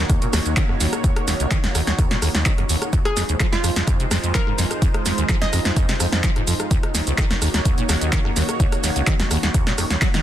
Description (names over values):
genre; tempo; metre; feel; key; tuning
acid house; 127 BPM; 4/4; straight; unclear; A4 = 440 Hz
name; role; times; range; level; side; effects
lush unison pad; sustained chords; 0.0-10.2 s; Ab3 to Db5; -27 LUFS; right 1 dB; chorus, phaser, sidechain pumping
acid bass, saw; riff; 0.0-10.2 s; Db2 to Gb3; -23 LUFS; equal; tube saturation, lush chorus, dub echo
electronic kick drum; drums; 0.1-10.1 s; none; -20 LUFS; equal; overdrive
punchy analog drum machine; drums; 0.1-10.2 s; handclaps, hi-hat, rim click, shaker, snare drum; -23 LUFS; equal; overdrive
hollow square pluck; melody; 3.1-6.1 s; F4 to Eb5; -29 LUFS; right 1 dB; chorus, dub echo
room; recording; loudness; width
light reverb; dense, heavily limited modern master; -17 LUFS; side -11 dB against mid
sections
0.0-10.2 A section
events
drum fill 10.0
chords
0.0 Ebm7; 2.9 Fm7; 6.7 Ebm7